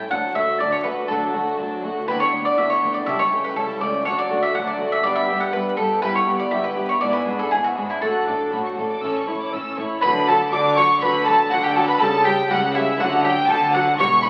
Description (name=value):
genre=classical, baroque-style concerto movement with solo episodes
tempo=121 BPM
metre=4/4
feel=straight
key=D major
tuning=A4 = 439 Hz
part: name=mandolin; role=melody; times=0.0-14.3 s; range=E4 to F#5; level=-23 LUFS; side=equal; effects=none
part: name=warm studio violin section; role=melody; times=0.0-14.3 s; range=E5 to F#6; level=-28 LUFS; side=equal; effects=none
part: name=warm studio violin section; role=second line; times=0.0-14.3 s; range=C#4 to D6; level=-29 LUFS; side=equal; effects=none
part: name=harpsichord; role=accompaniment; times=0.0-14.3 s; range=C#2 to G4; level=-34 LUFS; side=equal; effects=none
part: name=warm chamber viola section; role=accompaniment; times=0.0-14.3 s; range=F#3 to E4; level=-32 LUFS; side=equal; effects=none
part: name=rich chamber cello section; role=bass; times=0.1-14.3 s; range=C#2 to D3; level=-31 LUFS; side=equal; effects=none
part: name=rich chamber double bass section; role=bass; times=0.1-14.3 s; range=E1 to D2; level=-38 LUFS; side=equal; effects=none
room=wet recital hall reverb, RT60 1.5 s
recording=very old 78 rpm record, vinyl crackle, nothing above 10.6 kHz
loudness=-20 LUFS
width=mono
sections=0.0-10.0 A section; 10.0-14.3 B section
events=none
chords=0.1 D; 2.1 Em7/D; 3.1 A7/C#; 4.1 D; 5.0 G; 6.0 Em/G; 7.0 E7/G#; 8.0 D/A; 9.0 A; 10.0 D; 12.0 A7/C#; 13.0 D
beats=| 0.12 0.61 1.10 1.59 | 2.08 2.58 3.07 3.56 | 4.05 4.54 5.04 5.53 | 6.02 6.52 7.01 7.51 | 8.02 8.52 9.03 9.53 | 10.03 10.52 11.02 11.51 | 12.01 12.50 13.00 13.49 | 13.99